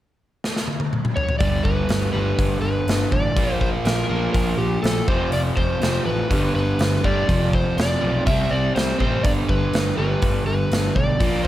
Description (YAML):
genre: blues rock power trio and southern rock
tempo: 122 BPM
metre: 4/4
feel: straight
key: unclear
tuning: A4 = 440 Hz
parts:
  - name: big rock drum kit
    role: drums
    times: 0.4-11.5 s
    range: hi-hat, kick drum, snare drum, toms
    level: -23 LUFS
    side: equal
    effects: none
  - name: overdriven slide guitar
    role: melody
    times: 1.2-11.5 s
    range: G4 to E5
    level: -25 LUFS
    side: equal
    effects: none
  - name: overdriven semi-hollow guitar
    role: riff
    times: 1.4-11.5 s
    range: F2 to C4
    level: -24 LUFS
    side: right 1 dB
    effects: none
  - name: fuzz picked electric bass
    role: bass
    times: 1.4-11.5 s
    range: F1 to G2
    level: -24 LUFS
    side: equal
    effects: overdrive
room: light reverb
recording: none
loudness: -18 LUFS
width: side -13 dB against mid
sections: 0.0-1.4 A section; 1.4-11.5 B section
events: drum fill 0.4-1.4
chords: 0.0 N.C.; 1.4 G; 3.4 Bb5; 5.1 F; 6.3 G; 7.3 F5; 8.3 C5; 9.2 G